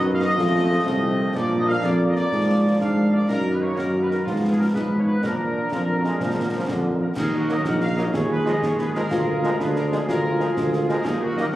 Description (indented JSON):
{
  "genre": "military-style march for wind band",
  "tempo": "124 BPM (dotted quarters)",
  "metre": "6/8",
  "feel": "straight",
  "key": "unclear",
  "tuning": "A4 = 440 Hz",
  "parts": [
    { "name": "warm euphonium", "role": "second line", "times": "0.0-11.5 s", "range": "C4 to Ab4", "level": "-28 LUFS", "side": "right 1 dB", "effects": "none" },
    { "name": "clear trombone section", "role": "sustained chords", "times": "0.0-11.4 s", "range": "D3 to D4", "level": "-30 LUFS", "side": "equal", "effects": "none" },
    { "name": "dark tuba", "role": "bass", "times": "0.0-11.6 s", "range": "Bb1 to Bb2", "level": "-22 LUFS", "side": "right 1 dB", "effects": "none" },
    { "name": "dark trumpet section", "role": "melody", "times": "0.1-11.4 s", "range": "F4 to Gb5", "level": "-30 LUFS", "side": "equal", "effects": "none" },
    { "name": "warm woodwind section", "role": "second line", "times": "0.1-11.6 s", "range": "Eb4 to F5", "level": "-28 LUFS", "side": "left 1 dB", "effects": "none" },
    { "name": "mellow French horn section", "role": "accompaniment", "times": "0.1-11.4 s", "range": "F3 to F#4", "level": "-34 LUFS", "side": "left 3 dB", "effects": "none" },
    { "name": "concert snare drum, concert bass drum and clash cymbals", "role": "drums", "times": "0.2-11.5 s", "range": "none", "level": "-32 LUFS", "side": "left 1 dB", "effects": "none" }
  ],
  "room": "moderate scoring stage reverb, RT60 1.7 s",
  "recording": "recorded on a phone in the room, club reverb, compression",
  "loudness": "-19 LUFS",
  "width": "side -15 dB against mid",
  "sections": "0.0-7.2 A section; 7.2-11.6 B section",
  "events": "none",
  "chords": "0.4 F7; 1.4 Bb; 2.3 Bb7/Ab; 3.3 Ebm/Gb; 4.3 Fdim/Ab; 5.2 Bb; 7.2 Ebm; 8.1 Db9/Eb; 9.1 Bb7/D; 11.0 Ebm"
}